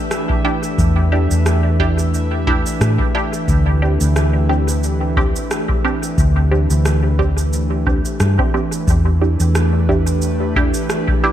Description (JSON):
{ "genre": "ambient dub", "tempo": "89 BPM", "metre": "4/4", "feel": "swing 55% on 16ths", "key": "E minor", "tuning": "A4 = 439 Hz", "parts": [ { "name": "airy breathy pad", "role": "sustained chords", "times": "0.0-11.3 s", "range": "E3 to B4", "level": "-22 LUFS", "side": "equal", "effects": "chorus" }, { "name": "bubbling stepped-filter texture", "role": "texture", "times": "0.0-8.9 s", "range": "E5", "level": "-33 LUFS", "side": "right 1 dB", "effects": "chorus, built-in reverb" }, { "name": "electronic rim click and cabasa", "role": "drums", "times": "0.1-11.0 s", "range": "none", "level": "-26 LUFS", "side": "right 1 dB", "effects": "overdrive, dub echo" }, { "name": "electronic kick drum", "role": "drums", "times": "0.3-11.2 s", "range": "none", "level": "-20 LUFS", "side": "equal", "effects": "none" }, { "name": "filtered dub chord stab", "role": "stabs", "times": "0.4-11.3 s", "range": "C4 to G4", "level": "-22 LUFS", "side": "right 2 dB", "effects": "phaser, cassette tape, dub echo" }, { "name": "hollow-body short-scale fingered electric bass", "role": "bass", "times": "0.8-10.7 s", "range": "D2 to A2", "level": "-16 LUFS", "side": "equal", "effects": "none" } ], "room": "light reverb", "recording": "none", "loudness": "-14 LUFS", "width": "side -11 dB against mid", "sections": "0.0-8.9 A section; 8.9-11.3 B section", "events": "none", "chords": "0.0 Em7; 3.5 D7sus4; 8.9 Em7" }